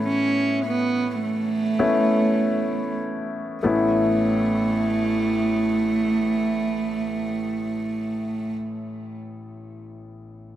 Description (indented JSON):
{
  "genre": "pop",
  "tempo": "46-54 BPM",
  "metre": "4/4",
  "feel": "straight",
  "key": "A major",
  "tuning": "A4 = 440 Hz",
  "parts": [
    { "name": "warm cello", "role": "melody", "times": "0.0-8.5 s", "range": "A3 to C#4", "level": "-24 LUFS", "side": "right 3 dB", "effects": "none" },
    { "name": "warm grand piano", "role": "accompaniment", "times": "0.0-10.6 s", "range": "A1 to E4", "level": "-24 LUFS", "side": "left 2 dB", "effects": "none" }
  ],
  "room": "moderate lush hall reverb, RT60 2.4 s",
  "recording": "none",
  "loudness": "-20 LUFS",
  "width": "side -12 dB against mid",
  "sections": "0.0-3.6 A section; 3.6-8.8 B section",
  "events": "slowing down 0.0-3.6",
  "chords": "0.0 Aadd9"
}